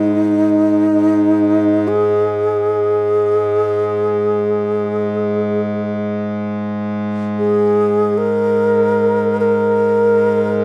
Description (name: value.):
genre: world meditative, free-time meditation music.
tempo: free time.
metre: none.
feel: none.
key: unclear.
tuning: A4 = 440 Hz.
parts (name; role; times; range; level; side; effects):
breathy bright low xiao; melody; 0.0-10.6 s; D#4 to A#4; -16 LUFS; equal; none.
hand-pumped harmonium; drone; 0.0-10.6 s; G#2; -22 LUFS; equal; none.
room: wet concert hall reverb, RT60 1.9 s.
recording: dark, warm production.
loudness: -16 LUFS.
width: mono.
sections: 0.0-10.6 A section.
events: none.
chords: none.